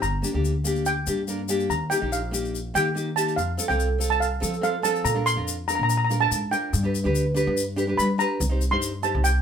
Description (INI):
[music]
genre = calypso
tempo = 143 BPM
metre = 4/4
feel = straight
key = Bb major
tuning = A4 = 440 Hz
[part]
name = steel pan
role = melody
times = 0.0-9.4 s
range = F5 to C6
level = -25 LUFS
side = right 1 dB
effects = none
[part]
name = nylon-string guitar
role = accompaniment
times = 0.0-9.3 s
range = Bb3 to C5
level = -27 LUFS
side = equal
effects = none
[part]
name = upright bass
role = bass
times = 0.0-9.4 s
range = G1 to G3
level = -26 LUFS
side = equal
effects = none
[part]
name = egg shaker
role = percussion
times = 0.0-9.3 s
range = none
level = -32 LUFS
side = left 7 dB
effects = none
[sound]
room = moderate studio reverb, RT60 0.6 s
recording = minimal, uncompressed stereo recording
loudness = -22 LUFS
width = side -8 dB against mid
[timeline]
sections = 0.0-5.1 A section; 5.1-9.4 B section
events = steel pan solo 0.0-5.1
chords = 0.0 Gm; 1.7 Eb; 3.4 F; 5.1 Bb; 6.7 G; 8.4 Cm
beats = | 0.02 0.44 0.86 1.28 | 1.70 2.12 2.54 2.96 | 3.38 3.79 4.21 4.63 | 5.05 5.47 5.89 6.31 | 6.73 7.15 7.57 7.99 | 8.41 8.83 9.25